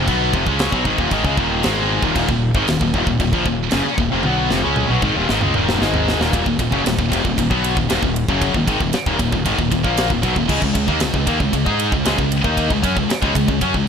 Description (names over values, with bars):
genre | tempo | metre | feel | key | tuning
heavy metal | 115 BPM | 4/4 | straight | Eb minor | A4 = 441 Hz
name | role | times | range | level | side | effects
heavy high-gain guitar | riff | 0.0-13.9 s | Eb2 to Ab4 | -22 LUFS | left 12 dB | distortion
heavy high-gain guitar | riff | 0.0-13.9 s | Eb2 to Ab4 | -22 LUFS | right 12 dB | distortion
sludgy distorted guitar | riff | 0.0-13.9 s | Eb2 to Ab4 | -23 LUFS | equal | overdrive
fuzz fingered electric bass | bass | 0.0-13.9 s | Eb1 to Ab2 | -23 LUFS | equal | overdrive
tight metal drum kit | drums | 0.1-13.9 s | crash cymbal, kick drum, ride cymbal, snare drum, toms | -22 LUFS | equal | none
room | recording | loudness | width
small room ambience | none | -16 LUFS | side -7 dB against mid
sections
0.0-6.3 A section; 6.3-13.9 B section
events
drum fill 4.2-6.3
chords
0.0 Ebm; 10.5 Db5